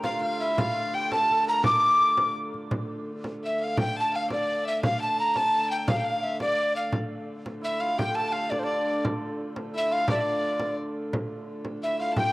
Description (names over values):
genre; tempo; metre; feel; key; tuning
medieval dance; 114 BPM (dotted quarters); 6/8; straight; D minor; A4 = 440 Hz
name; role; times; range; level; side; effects
breathy hollow soprano recorder; melody; 0.0-12.3 s; C5 to D6; -25 LUFS; equal; cassette tape
clear fiddle; second line; 0.0-12.3 s; D5 to D6; -33 LUFS; left 2 dB; cassette tape
hammered dulcimer; second line; 0.0-4.3, 7.6-12.3 s; D4 to D5; -37 LUFS; right 2 dB; cassette tape
dark hurdy-gurdy; drone; 0.0-12.3 s; D3 to A3; -36 LUFS; equal; cassette tape
frame drum; percussion; 0.0-12.3 s; none; -30 LUFS; equal; none
room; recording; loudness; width
wet spring reverb, RT60 2.5 s; home recording on cassette; -24 LUFS; side -19 dB against mid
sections
0.0-2.7 A section; 2.7-11.1 B section; 11.1-12.3 B section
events
speeding up 0.0-12.3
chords
none